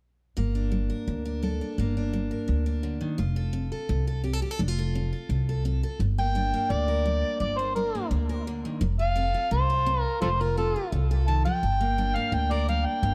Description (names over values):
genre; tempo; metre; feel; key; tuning
honky-tonk and classic country; 171 BPM; 4/4; straight; G minor; A4 = 440 Hz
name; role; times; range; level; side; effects
picked steel-string acoustic guitar; accompaniment; 0.4-13.1 s; G2 to Bb4; -34 LUFS; equal; none
upright bass; bass; 0.4-13.1 s; F1 to D2; -29 LUFS; equal; none
overdriven harmonica; melody; 6.2-13.1 s; F4 to A5; -29 LUFS; equal; tape echo
room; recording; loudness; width
light reverb, studio ambience; echo-heavy mix, faint mains hum; -27 LUFS; mono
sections
0.4-6.0 A section; 6.0-13.1 B section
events
none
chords
0.4 Gm; 3.2 F; 6.0 Gm; 8.8 F; 11.6 Gm